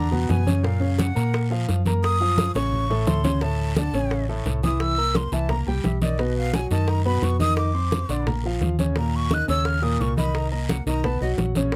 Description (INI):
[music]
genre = Afro-Cuban jazz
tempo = 173 BPM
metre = 4/4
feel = straight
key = unclear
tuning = A4 = 440 Hz
[part]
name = breathy jazz flute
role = second line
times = 0.0-11.3 s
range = D5 to F#6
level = -31 LUFS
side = equal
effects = none
[part]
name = warm grand piano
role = accompaniment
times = 0.0-11.8 s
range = A2 to C6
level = -29 LUFS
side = equal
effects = none
[part]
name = hollow-body short-scale fingered electric bass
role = bass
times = 0.0-11.8 s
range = A1 to A#2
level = -26 LUFS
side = equal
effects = none
[part]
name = bongos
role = percussion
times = 0.1-11.8 s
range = none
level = -33 LUFS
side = equal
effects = none
[part]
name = congas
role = percussion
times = 0.1-11.8 s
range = none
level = -30 LUFS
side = equal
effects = none
[part]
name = guiro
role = percussion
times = 0.3-11.8 s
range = none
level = -41 LUFS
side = equal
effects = none
[sound]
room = little or no reverb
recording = close, detailed microphones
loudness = -23 LUFS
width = mono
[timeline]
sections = 0.0-3.4 A section; 3.4-11.8 A section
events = flute solo 0.0-11.8; drum fill 2.6-3.4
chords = 0.0 Eadd9; 0.7 F#maj7; 2.7 Aadd11; 3.4 D5; 4.8 C7; 6.2 B; 7.6 F5; 8.3 A#5; 9.0 D#5; 10.3 Bmaj7; 11.0 Bsus2